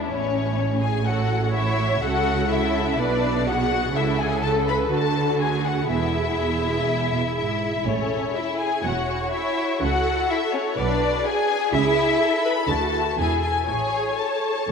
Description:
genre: quick classical-period movement for string orchestra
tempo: 123 BPM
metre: 4/4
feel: straight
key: A major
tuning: A4 = 440 Hz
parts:
  - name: warm symphonic violin section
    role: second line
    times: 0.0-14.7 s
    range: C#4 to B4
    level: -26 LUFS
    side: left 2 dB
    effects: none
  - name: rich symphonic violin section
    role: melody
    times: 0.1-14.7 s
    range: C#5 to B5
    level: -26 LUFS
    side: left 6 dB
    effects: none
  - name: clear symphonic double bass section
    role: bass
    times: 0.1-14.7 s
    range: E1 to D2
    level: -28 LUFS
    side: right 4 dB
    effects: none
  - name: rich symphonic cello section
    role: bass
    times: 0.1-14.7 s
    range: E2 to D3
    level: -28 LUFS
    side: right 5 dB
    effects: none
  - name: rich symphonic viola section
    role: accompaniment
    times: 1.1-14.7 s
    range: E4 to C#5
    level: -27 LUFS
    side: right 2 dB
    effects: none
room: wet cathedral reverb, RT60 5.4 s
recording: in a vast, echoing space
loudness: -20 LUFS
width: side -6 dB against mid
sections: 0.1-14.7 A section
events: none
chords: 0.1 A; 2.0 A/C#; 3.0 G#dim/B; 4.0 A/C#; 4.9 D; 5.9 E; 7.9 A; 9.8 A/C#; 10.8 G#dim/B; 11.7 A/C#; 12.7 D; 13.2 E; 13.7 A

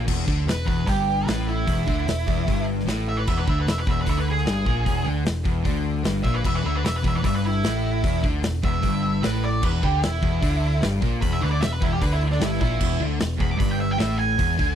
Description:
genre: blues rock power trio and southern rock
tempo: 151 BPM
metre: 4/4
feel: straight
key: unclear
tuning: A4 = 440 Hz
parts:
  - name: overdriven semi-hollow guitar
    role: riff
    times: 0.0-14.8 s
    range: E2 to D3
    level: -26 LUFS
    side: left 1 dB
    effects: none
  - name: overdriven picked electric bass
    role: bass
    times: 0.0-14.8 s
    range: E1 to D2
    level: -26 LUFS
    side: equal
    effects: none
  - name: big rock drum kit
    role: drums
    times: 0.1-14.7 s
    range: crash cymbal, hi-hat, kick drum, snare drum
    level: -26 LUFS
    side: equal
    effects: none
  - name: octave-fuzz lead guitar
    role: melody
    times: 0.5-14.8 s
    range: D4 to D6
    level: -27 LUFS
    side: right 3 dB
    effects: distortion
room: studio reverb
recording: dry, close 1970s-style studio recording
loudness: -20 LUFS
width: side -9 dB against mid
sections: 0.1-14.8 A section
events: lead electric guitar solo 0.1-14.8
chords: 0.0 Em7

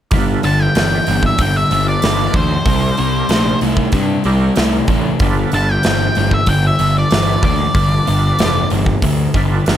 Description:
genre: blues rock power trio and southern rock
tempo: 94 BPM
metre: 4/4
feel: straight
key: G mixolydian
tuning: A4 = 440 Hz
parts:
  - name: overdriven tonewheel organ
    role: sustained chords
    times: 0.1-9.8 s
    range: D4 to B4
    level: -26 LUFS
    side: right 3 dB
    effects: slow rotary speaker, chorus vibrato
  - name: fuzz guitar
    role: riff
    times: 0.1-9.8 s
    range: G2 to A3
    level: -17 LUFS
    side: left 1 dB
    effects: distortion
  - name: fuzz picked electric bass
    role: bass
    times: 0.1-9.8 s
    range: F1 to G2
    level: -18 LUFS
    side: equal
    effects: overdrive
  - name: big rock drum kit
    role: drums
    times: 0.1-9.8 s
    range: hi-hat, kick drum, snare drum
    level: -19 LUFS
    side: equal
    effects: none
  - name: octave-fuzz lead guitar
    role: melody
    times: 0.5-8.7 s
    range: C5 to A5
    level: -19 LUFS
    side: equal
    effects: distortion
room: small room ambience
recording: none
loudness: -12 LUFS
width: side -11 dB against mid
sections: 0.1-9.8 A section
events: none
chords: 0.1 G7; 2.7 C7; 5.2 G7

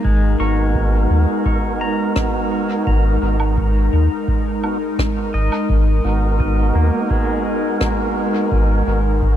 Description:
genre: ambient dub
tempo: 85 BPM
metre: 4/4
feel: straight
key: G# minor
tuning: A4 = 438 Hz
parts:
  - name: airy breathy pad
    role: sustained chords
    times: 0.0-9.4 s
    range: G#3 to A#4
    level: -22 LUFS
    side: equal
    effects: chorus
  - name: pedal steel guitar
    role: arpeggios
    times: 0.0-9.4 s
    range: G#3 to C#6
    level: -27 LUFS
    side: left 2 dB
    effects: tape echo
  - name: warm sub bass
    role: bass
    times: 0.0-9.4 s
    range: G#1 to D#2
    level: -16 LUFS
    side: equal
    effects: none
  - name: electronic kick drum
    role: drums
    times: 0.0-9.4 s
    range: none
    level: -21 LUFS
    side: equal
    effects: none
  - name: tonewheel organ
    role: stabs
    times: 0.4-9.0 s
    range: B3 to A#4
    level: -25 LUFS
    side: right 3 dB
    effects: slow rotary speaker, dub echo
  - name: rim click and woodblock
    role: drums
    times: 2.2-8.0 s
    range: none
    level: -30 LUFS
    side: right 1 dB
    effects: dub echo
room: light reverb, studio reverb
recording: none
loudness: -15 LUFS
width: side -11 dB against mid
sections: 0.0-9.4 A section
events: none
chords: 0.0 G#m7

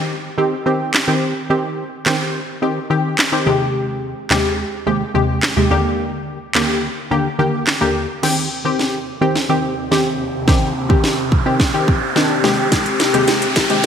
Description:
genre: dance-pop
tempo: 107 BPM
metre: 4/4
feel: straight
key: Eb major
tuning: A4 = 441 Hz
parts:
  - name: punchy chord stab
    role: accompaniment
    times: 0.0-13.9 s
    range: Eb2 to G4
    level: -18 LUFS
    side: equal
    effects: chorus, sidechain pumping
  - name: house drum kit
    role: drums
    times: 0.9-13.9 s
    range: crash cymbal, handclaps, hi-hat, kick drum, snare drum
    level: -19 LUFS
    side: right 1 dB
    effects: none
  - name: shimmering ambient pad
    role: sustained chords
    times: 9.4-13.9 s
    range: Eb2 to G4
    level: -23 LUFS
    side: left 2 dB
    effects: chorus, built-in reverb, sidechain pumping
  - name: riser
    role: sound effects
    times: 9.4-13.9 s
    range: none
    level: -23 LUFS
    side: right 2 dB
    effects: none
room: wet lush hall reverb, RT60 2.2 s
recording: bright 1980s-style digital production, high-pass filter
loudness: -15 LUFS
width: side -8 dB against mid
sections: 0.0-8.2 A section; 8.2-13.9 B section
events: build-up 8.2-13.9; drum fill 8.2-13.9; riser 9.4-13.9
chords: 0.0 Eb6; 3.5 Abmaj7/Eb; 5.7 Bb6/Eb; 8.2 Eb6; 12.4 Abmaj7/Eb

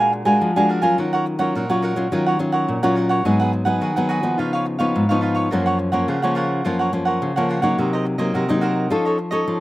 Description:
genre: samba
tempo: 106 BPM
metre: 4/4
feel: straight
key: unclear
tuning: A4 = 440 Hz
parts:
  - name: cavaquinho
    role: accompaniment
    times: 0.0-9.6 s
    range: D4 to Ab5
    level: -22 LUFS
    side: right 2 dB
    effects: none
  - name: nylon-string guitar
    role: accompaniment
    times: 0.0-9.6 s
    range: Gb2 to A4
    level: -19 LUFS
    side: left 1 dB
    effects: none
room: little or no reverb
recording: recorded outdoors, with no room sound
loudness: -17 LUFS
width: side -16 dB against mid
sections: 0.0-9.6 A section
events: none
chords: 0.0 Bb7b13; 1.0 Ebm9; 3.3 Abm7; 4.4 Db9; 5.5 Gbmaj7; 7.8 Cm7b5; 8.9 Faug7

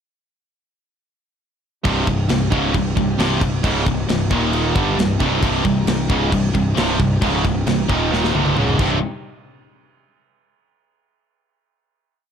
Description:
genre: heavy metal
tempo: 134 BPM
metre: 4/4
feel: straight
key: C phrygian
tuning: A4 = 440 Hz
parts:
  - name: distorted electric guitar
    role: riff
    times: 1.8-9.0 s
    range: C2 to G3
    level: -22 LUFS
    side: right 10 dB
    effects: overdrive
  - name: distorted electric guitar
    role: riff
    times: 1.8-9.0 s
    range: C2 to G3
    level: -25 LUFS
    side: right 1 dB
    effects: overdrive
  - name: high-gain distorted guitar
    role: riff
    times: 1.8-9.0 s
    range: C2 to G3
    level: -22 LUFS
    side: left 8 dB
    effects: distortion
  - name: dark symphonic string section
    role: sustained chords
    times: 1.9-9.0 s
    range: Ab2 to Bb4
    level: -32 LUFS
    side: left 1 dB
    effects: none
  - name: fuzz picked electric bass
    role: bass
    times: 1.9-9.0 s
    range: C1 to G1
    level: -23 LUFS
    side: equal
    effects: overdrive
  - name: tight metal drum kit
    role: drums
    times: 1.9-8.9 s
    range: crash cymbal, kick drum, snare drum, toms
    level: -22 LUFS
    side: equal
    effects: none
room: light reverb, small room ambience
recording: dark, warm production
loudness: -16 LUFS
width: side -8 dB against mid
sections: 1.9-9.0 riff; 9.0-10.8 final hit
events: drum fill 8.1-9.0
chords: 1.9 Cm; 4.3 Eb5; 4.8 Cm; 8.6 Db5; 8.8 Cm; 9.0 N.C.

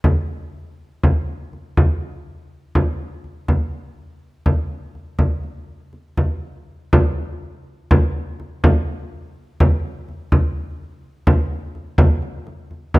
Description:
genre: contemporary instrumental, contemporary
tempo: 246 BPM (eighths)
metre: 7/8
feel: straight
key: none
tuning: none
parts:
  - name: frame drum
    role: percussion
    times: 0.0-13.0 s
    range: none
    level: -16 LUFS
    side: equal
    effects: none
room: moderate recital hall reverb, RT60 1.6 s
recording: close, detailed microphones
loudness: -17 LUFS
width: side -21 dB against mid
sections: 0.0-6.9 A section; 6.9-13.0 B section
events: stop 6.4-6.9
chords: none

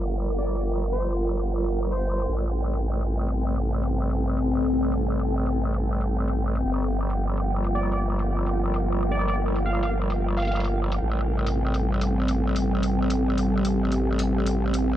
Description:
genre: glitch hop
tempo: 110 BPM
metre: 4/4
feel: swing 62% on 16ths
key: unclear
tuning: A4 = 436 Hz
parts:
  - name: dark analog pad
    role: sustained chords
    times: 0.0-15.0 s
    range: G3 to Bb4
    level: -29 LUFS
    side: equal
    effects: chorus
  - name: growl bass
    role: bass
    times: 0.0-15.0 s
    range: G1 to A1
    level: -25 LUFS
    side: equal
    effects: chorus
  - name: electronic hi-hat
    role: drums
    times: 0.0-14.8 s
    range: none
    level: -40 LUFS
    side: left 2 dB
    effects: low-pass filter on perc, low-pass filter on hats, low-pass filter on snare
  - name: ethereal airy pad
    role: texture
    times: 0.0-15.0 s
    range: C4 to G5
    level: -29 LUFS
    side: equal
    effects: ensemble chorus, built-in reverb
  - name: sync lead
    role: melody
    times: 0.4-2.3, 7.8-10.6 s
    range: C5 to F5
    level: -34 LUFS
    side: right 1 dB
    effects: chorus, cassette tape, dub echo
room: moderate lush hall reverb, RT60 2.3 s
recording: dark, warm production, low-pass filter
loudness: -22 LUFS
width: side -12 dB against mid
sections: 0.0-15.0 A section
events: filter sweep on analog synth pad 0.0-15.0; filter sweep 0.0-15.0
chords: 0.0 Gm7; 2.3 Am7; 6.7 Gm7; 11.0 Am7

